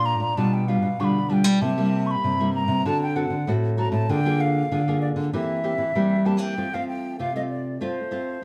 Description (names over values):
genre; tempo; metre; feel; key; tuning
samba and choro; 97 BPM; 4/4; straight; unclear; A4 = 441 Hz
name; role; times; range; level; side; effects
hollow wooden flute; melody; 0.0-8.4 s; C5 to Db6; -30 LUFS; equal; plate reverb
nylon-string guitar; accompaniment; 0.0-8.4 s; G2 to A4; -28 LUFS; equal; none
nylon-string guitar; bass; 0.0-6.5 s; A2 to G3; -26 LUFS; equal; none
room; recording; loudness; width
wet studio reverb, RT60 0.8 s; heard from further back in the room; -23 LUFS; mono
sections
0.0-8.4 A section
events
break 6.6-8.4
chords
0.4 G7/B; 1.6 C7; 2.9 D7; 4.1 Bb7/D; 5.3 C7/E; 6.6 F